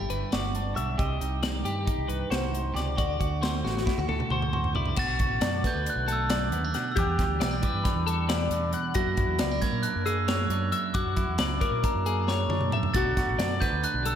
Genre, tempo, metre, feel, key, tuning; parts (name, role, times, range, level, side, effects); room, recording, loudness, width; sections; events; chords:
math rock and midwest emo; 271 BPM (eighths); 9/8; straight; A4 = 444 Hz
clean electric guitar; accompaniment; 0.0-14.2 s; E2 to G4; -33 LUFS; right 6 dB; spring reverb
twelve-string electric guitar; arpeggios; 0.0-14.2 s; F#4 to F#5; -31 LUFS; left 6 dB; phaser
overdriven fingered electric bass; bass; 0.0-14.2 s; G1 to A#2; -31 LUFS; equal
crisp fusion drum kit; drums; 0.1-14.2 s; crash cymbal, hi-hat, kick drum, snare drum, toms; -30 LUFS; equal
glockenspiel with soft plastic mallets; melody; 5.0-14.2 s; A#5 to A#6; -31 LUFS; equal
moderate lush hall reverb, RT60 1.8 s, studio reverb; big arena sound; -24 LUFS; side -9 dB against mid
0.0-5.0 A section; 5.0-14.2 B section
drum fill 3.6-5.0, 12.3-12.9
0.0 Gmaj7; 1.0 Cm; 3.0 D7; 5.0 Bm7; 7.0 Em7; 9.0 F#7b13; 12.9 Bm7